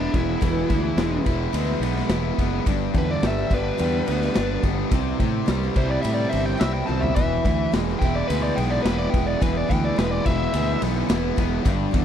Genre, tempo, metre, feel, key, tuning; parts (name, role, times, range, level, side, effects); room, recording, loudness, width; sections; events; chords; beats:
classic rock; 107 BPM; 4/4; straight; A4 = 439 Hz
biting lead guitar; melody; 0.0-10.8 s; D4 to A5; -28 LUFS; left 1 dB; overdrive, tape echo
picked steel-string acoustic guitar; accompaniment; 0.0-12.0 s; E2 to G#4; -32 LUFS; left 14 dB
crunchy overdriven guitar; riff; 0.0-12.0 s; G2 to E4; -27 LUFS; right 14 dB
distorted electric guitar; riff; 0.0-12.0 s; G2 to E4; -30 LUFS; left 13 dB; overdrive
fuzz fingered electric bass; bass; 0.0-12.0 s; E1 to A2; -26 LUFS; equal; overdrive
raw garage drum kit; drums; 0.1-12.0 s; kick drum, ride cymbal, snare drum, toms; -26 LUFS; equal
little or no reverb; -20 LUFS; side -9 dB against mid
0.0-12.0 A section
lead electric guitar solo 0.0-12.0; drum fill 6.9
0.0 E; 2.7 G; 4.9 C; 7.2 E
| 0.42 0.98 1.54 2.10 | 2.66 3.23 3.79 4.35 | 4.91 5.48 6.04 6.60 | 7.17 7.73 8.29 8.86 | 9.42 9.98 10.54 11.10 | 11.66